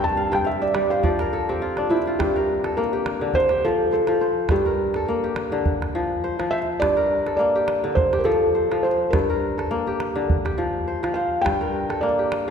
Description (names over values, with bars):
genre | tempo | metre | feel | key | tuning
west african traditional, West African string and xylophone music | 104 BPM | 4/4 | swing 55% on 16ths | G dorian | A4 = 440 Hz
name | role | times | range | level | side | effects
felt-muted upright piano | melody | 0.0-12.5 s | F4 to A5 | -22 LUFS | right 1 dB | none
kora | arpeggios | 0.0-12.5 s | G2 to G5 | -24 LUFS | left 2 dB | none
calabash | percussion | 0.0-12.5 s | none | -28 LUFS | right 2 dB | none
room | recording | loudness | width
wet concert hall reverb, RT60 2.2 s | recorded in a church or concert hall | -20 LUFS | side -7 dB against mid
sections
0.0-2.2 A section; 2.2-12.5 B section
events
felt piano solo 0.0-2.2; kora fill 0.2-2.2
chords
0.0 Gm; 1.0 F5; 2.2 Gm; 3.3 F; 4.5 Gm; 5.7 F5; 6.8 Gm; 8.0 F; 9.1 Gm; 10.3 F5; 11.4 Gm